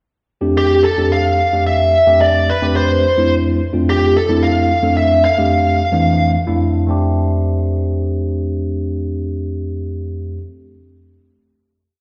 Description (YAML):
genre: jazz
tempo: 73 BPM (dotted quarters)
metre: 6/8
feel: straight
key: F major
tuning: A4 = 440 Hz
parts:
  - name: tine electric piano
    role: accompaniment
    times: 0.4-10.4 s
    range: F2 to A4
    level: -18 LUFS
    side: equal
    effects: overdrive, phaser
  - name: bluesy overdriven lead guitar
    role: melody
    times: 0.6-6.3 s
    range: G4 to F5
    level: -17 LUFS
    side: equal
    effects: distortion, slapback echo
room: moderate plate reverb, RT60 3.0 s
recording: live gig heard through the venue's PA, recital hall reverb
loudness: -15 LUFS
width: mono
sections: 0.3-6.9 groove; 6.9-10.2 final chord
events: none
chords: 0.3 F69